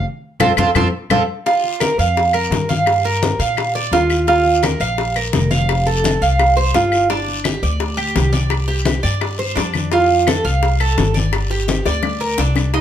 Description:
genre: latin, Cuban son and guajira.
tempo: 170 BPM.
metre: 4/4.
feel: straight.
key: unclear.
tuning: A4 = 440 Hz.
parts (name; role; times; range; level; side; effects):
Cuban tres; arpeggios; 0.0-12.8 s; C4 to F5; -17 LUFS; right 3 dB; none.
upright bass; bass; 0.0-12.8 s; F1 to Bb2; -20 LUFS; equal; none.
bongos; percussion; 0.4-12.8 s; none; -24 LUFS; left 6 dB; none.
claves; percussion; 0.4-12.7 s; none; -25 LUFS; left 8 dB; none.
congas; percussion; 0.4-12.8 s; none; -23 LUFS; left 4 dB; none.
guiro; percussion; 1.5-12.7 s; none; -29 LUFS; left 6 dB; none.
room: moderate studio reverb, RT60 0.7 s.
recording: none.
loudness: -14 LUFS.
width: side -10 dB against mid.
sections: 0.0-1.5 A section; 1.5-12.7 A section.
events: band accent 0.1-1.5; drum fill 0.4-1.5, 11.7-12.7.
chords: 0.1 F; 1.5 Bb5; 2.9 Gm7; 4.3 Ebsus2; 5.7 Fadd9; 7.1 G5; 8.5 Csus2; 9.9 Fadd9; 11.3 Gm.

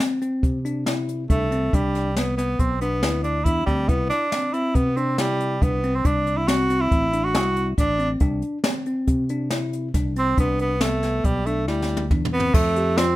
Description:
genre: progressive instrumental, band music in an uneven meter.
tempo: 139 BPM.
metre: 5/4.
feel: straight.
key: C major.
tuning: A4 = 440 Hz.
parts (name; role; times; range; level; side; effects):
bell-like tine electric piano; arpeggios; 0.0-13.2 s; B3 to G4; -27 LUFS; left 2 dB; none.
jazz brush drum kit; drums; 0.0-13.1 s; crash cymbal, hi-hat, kick drum, snare drum, toms; -23 LUFS; equal; none.
fingered electric bass; bass; 0.4-13.2 s; A1 to C3; -25 LUFS; equal; none.
edgy tenor saxophone; melody; 1.3-13.2 s; G3 to F#4; -24 LUFS; right 2 dB; none.
room: moderate studio reverb, RT60 0.6 s.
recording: rough home demo mix.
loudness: -20 LUFS.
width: side -16 dB against mid.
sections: 0.0-12.5 A section.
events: drum fill 11.7-12.5.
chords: 0.0 C69; 1.7 Em7; 3.9 C; 6.1 D7; 8.2 Cadd9; 10.4 Em7; 12.5 Fadd9.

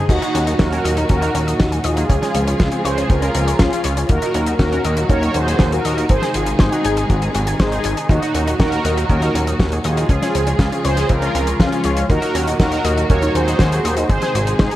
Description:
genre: italo disco.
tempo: 120 BPM.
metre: 4/4.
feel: straight.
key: Eb dorian.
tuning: A4 = 439 Hz.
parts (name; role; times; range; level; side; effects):
mellow synth brass; melody; 0.0-14.7 s; Db4 to Db5; -21 LUFS; equal; chorus, digital delay.
rich studio string section; sustained chords; 0.0-14.8 s; Bb2 to Ab4; -23 LUFS; equal; vintage 12-bit sampler grit.
analog pluck; arpeggios; 0.0-14.8 s; C4 to Ab5; -26 LUFS; left 1 dB; chorus, cassette tape, digital delay.
fat analog bass; bass; 0.1-14.7 s; Ab1 to Eb2; -20 LUFS; equal; tube saturation.
damped 70s drum kit; drums; 0.1-14.8 s; crash cymbal, hi-hat, snare drum; -22 LUFS; equal; studio reverb.
kick drum; drums; 0.1-14.7 s; none; -17 LUFS; equal; studio reverb.
room: light reverb, studio reverb.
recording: vinyl crackle.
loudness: -15 LUFS.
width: side -14 dB against mid.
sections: 0.1-14.8 A section.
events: none.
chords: 0.1 Ebm; 2.1 Db; 4.1 Ebm; 6.1 Ab; 8.1 Ebm; 10.1 Db; 12.1 Ebm; 14.1 Ab.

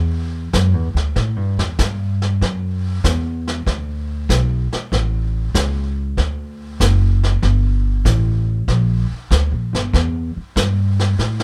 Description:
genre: jazz piano trio.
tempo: 96 BPM.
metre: 4/4.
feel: swing 68% on 8ths.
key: unclear.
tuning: A4 = 440 Hz.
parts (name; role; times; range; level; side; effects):
upright bass; bass; 0.0-11.4 s; F#1 to A2; -20 LUFS; equal; none.
vintage brush drum kit; drums; 0.5-11.4 s; brushed snare drum, hi-hat, kick drum, snare drum; -24 LUFS; equal; none.
room: little or no reverb.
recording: close, detailed microphones.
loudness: -19 LUFS.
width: mono.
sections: 0.0-11.4 A section.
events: drum fill 11.2.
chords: none.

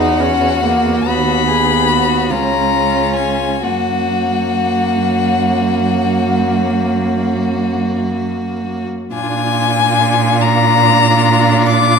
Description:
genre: classical, slow romantic movement for string quartet.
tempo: 43-49 BPM (dotted quarters).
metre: 12/8.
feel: rubato.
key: F# major.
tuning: A4 = 439 Hz.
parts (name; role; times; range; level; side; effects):
clear violin; melody; 0.0-12.0 s; F#5 to D6; -16 LUFS; left 8 dB; none.
clear violin; second line; 0.0-12.0 s; E#4 to G#4; -22 LUFS; left 3 dB; none.
clear viola; accompaniment; 0.0-12.0 s; A#3 to D#4; -18 LUFS; right 2 dB; none.
rich cello; bass; 0.0-12.0 s; C#2 to A#2; -18 LUFS; right 6 dB; none.
room: moderate recital hall reverb, RT60 1.4 s.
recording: none.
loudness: -12 LUFS.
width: side -6 dB against mid.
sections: 0.0-9.1 A section; 9.1-12.0 B section.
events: none.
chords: 0.0 F#7/E; 1.1 B/D#; 2.3 C#; 3.6 F#; 9.1 A#7.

